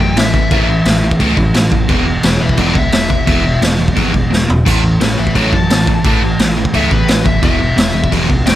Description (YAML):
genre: punk rock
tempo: 173 BPM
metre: 4/4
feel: straight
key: unclear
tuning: A4 = 440 Hz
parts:
  - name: dark smooth lead guitar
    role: melody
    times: 0.0-8.6 s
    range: G#4 to A5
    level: -20 LUFS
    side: left 4 dB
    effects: overdrive
  - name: crunchy overdriven guitar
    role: riff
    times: 0.0-8.6 s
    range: E2 to A3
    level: -15 LUFS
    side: right 1 dB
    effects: none
  - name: growling picked electric bass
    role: bass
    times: 0.0-8.6 s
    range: E1 to F#2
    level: -19 LUFS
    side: equal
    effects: overdrive
  - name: raw garage drum kit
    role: drums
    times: 0.2-8.6 s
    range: crash cymbal, kick drum, snare drum, splash cymbal, toms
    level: -14 LUFS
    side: equal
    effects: none
room: little or no reverb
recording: none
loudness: -10 LUFS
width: side -13 dB against mid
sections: 0.0-8.6 A section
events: lead electric guitar solo 0.0-8.6; drum fill 4.3-4.7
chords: 0.0 A5; 1.9 E5; 4.7 A5; 7.4 E5